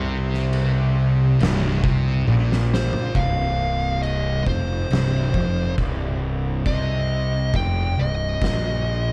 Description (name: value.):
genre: stoner and doom metal.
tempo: 68 BPM.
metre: 4/4.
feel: straight.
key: C minor.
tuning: A4 = 440 Hz.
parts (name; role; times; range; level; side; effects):
fuzz guitar; riff; 0.0-9.1 s; C2 to C3; -26 LUFS; equal; distortion.
thick fuzz guitar; riff; 0.0-3.1 s; C2 to C3; -30 LUFS; equal; distortion.
fuzz fingered electric bass; bass; 0.0-9.1 s; C1 to C2; -27 LUFS; equal; overdrive.
oversized low-tuned drum kit; drums; 0.3-8.6 s; crash cymbal, kick drum, snare drum, toms; -29 LUFS; equal; none.
fuzz lead guitar; melody; 2.7-9.1 s; C5 to G5; -30 LUFS; equal; distortion, digital delay.
room: light reverb, studio reverb.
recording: dark, warm production.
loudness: -22 LUFS.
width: mono.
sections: 0.0-3.2 A section; 3.2-9.1 B section.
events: drum fill 2.3-3.2.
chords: 0.0 N.C.; 3.2 Cm.